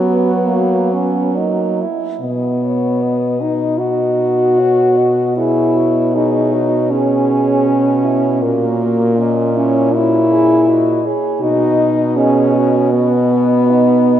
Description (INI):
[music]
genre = classical, lyrical piece for horn quartet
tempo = 78 BPM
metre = 4/4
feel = uneven beats, rubato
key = B major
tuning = A4 = 440 Hz
[part]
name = warm French horn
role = melody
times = 0.0-14.2 s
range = F#4 to D#5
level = -24 LUFS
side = left 6 dB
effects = none
[part]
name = mellow French horn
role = second line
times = 0.0-14.2 s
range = A#3 to G#4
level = -21 LUFS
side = right 6 dB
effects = none
[part]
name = mellow French horn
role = accompaniment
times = 0.0-14.2 s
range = A#3 to F#4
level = -14 LUFS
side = left 1 dB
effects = none
[part]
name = warm French horn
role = bass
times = 0.0-14.2 s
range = A#2 to F#3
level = -18 LUFS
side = right 2 dB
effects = none
[sound]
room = wet church reverb, RT60 3.1 s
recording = dark, warm production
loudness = -12 LUFS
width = side -10 dB against mid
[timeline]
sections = 0.0-2.2 A section; 2.2-14.2 B section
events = none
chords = 0.5 F#; 2.2 B; 5.4 C#m7/B; 8.4 F#7/A#; 11.4 B